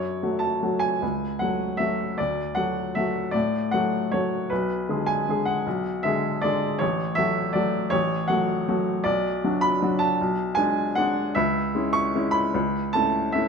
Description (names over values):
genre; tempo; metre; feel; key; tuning
classical, piano waltz; 146-168 BPM; 3/4; rubato; F# minor; A4 = 440 Hz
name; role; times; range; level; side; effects
clear baby grand piano; solo; 0.0-13.5 s; A1 to C#6; -22 LUFS; equal; none
room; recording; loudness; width
moderate scoring stage reverb, RT60 1.5 s; close, detailed microphones; -22 LUFS; side -5 dB against mid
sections
0.0-13.5 A section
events
none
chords
0.0 F#m; 2.2 D; 4.5 G#dim/B; 6.8 F#m/A; 9.0 Bm; 10.2 G#dim/B; 11.4 C#m; 12.5 A/C#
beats
0.22 0.62 | 1.02 1.41 1.80 | 2.19 2.56 2.96 | 3.34 3.73 4.12 | 4.50 4.89 5.28 | 5.66 6.03 6.43 | 6.81 7.18 7.55 | 7.92 8.29 8.67 | 9.05 9.41 9.80 | 10.18 10.56 10.96 | 11.35 11.74 12.14 | 12.53 12.93 13.34